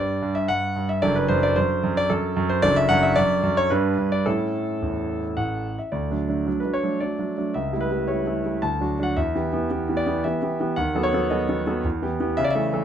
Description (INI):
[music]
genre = classical-period piano sonatina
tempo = 111 BPM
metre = 3/4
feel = straight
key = D major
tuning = A4 = 435 Hz
[part]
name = clear concert grand piano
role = solo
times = 0.0-12.8 s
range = F#1 to A5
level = -21 LUFS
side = right 1 dB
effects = none
[sound]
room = little or no reverb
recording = close, detailed microphones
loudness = -21 LUFS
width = side -9 dB against mid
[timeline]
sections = 0.0-5.9 A section; 5.9-12.8 B section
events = none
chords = 0.0 G5; 1.0 D/F#; 3.7 G; 4.3 A; 5.9 D; 7.5 A7/C#; 8.6 D; 9.2 Em; 10.8 B7/D#; 11.8 Em